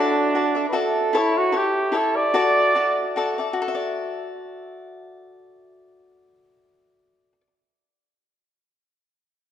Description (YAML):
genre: mexican folk, mariachi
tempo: 136-153 BPM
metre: 3/4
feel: straight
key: D major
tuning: A4 = 438 Hz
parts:
  - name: mellow trumpet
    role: melody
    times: 0.0-3.2 s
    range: D4 to D5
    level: -20 LUFS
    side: right 2 dB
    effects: none
  - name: cavaquinho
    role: accompaniment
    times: 0.0-7.5 s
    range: E4 to E5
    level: -23 LUFS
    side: left 3 dB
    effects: none
room: wet concert hall reverb, RT60 2.2 s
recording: dark, warm production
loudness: -19 LUFS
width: side -10 dB against mid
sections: 0.0-1.1 A section; 1.1-3.6 B section; 3.6-6.2 C section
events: slowing down 1.1-3.6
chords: 0.0 Dadd9; 1.1 A; 2.3 Dadd9